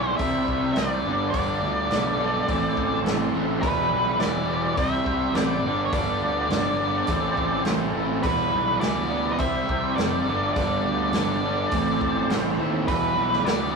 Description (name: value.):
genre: blues rock power trio and southern rock.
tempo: 104 BPM.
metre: 4/4.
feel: straight.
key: A minor.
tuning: A4 = 440 Hz.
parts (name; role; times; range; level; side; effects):
octave-fuzz lead guitar; melody; 0.0-13.8 s; B4 to E5; -26 LUFS; equal; distortion.
overdriven tonewheel organ; sustained chords; 0.0-13.7 s; B3 to C6; -34 LUFS; right 2 dB; slow rotary speaker, chorus vibrato.
distorted electric guitar; riff; 0.0-13.8 s; G2 to E4; -25 LUFS; equal; distortion.
fuzz fingered electric bass; bass; 0.0-13.8 s; E1 to D#2; -30 LUFS; right 1 dB; overdrive.
vintage drum kit; drums; 0.2-13.6 s; hi-hat, kick drum, snare drum; -29 LUFS; right 1 dB; none.
room: moderate studio reverb, RT60 0.5 s.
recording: rough rehearsal-room recording, warm saturation, small room reverb.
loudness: -21 LUFS.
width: side -4 dB against mid.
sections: 0.0-13.8 A section.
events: tonewheel organ fill 1.9-3.6, 11.7-12.9.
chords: 0.2 C; 1.1 G; 2.5 Am; 3.6 Em; 4.8 C; 5.6 G; 7.1 Am; 8.2 Em; 9.4 C; 10.3 G; 11.7 Am; 12.9 Em.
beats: 0.20 0.77 | 1.34 1.91 2.48 3.06 | 3.63 4.20 4.78 5.35 | 5.93 6.50 7.08 7.66 | 8.23 8.81 9.39 9.97 | 10.55 11.13 11.71 12.29 | 12.87 13.45.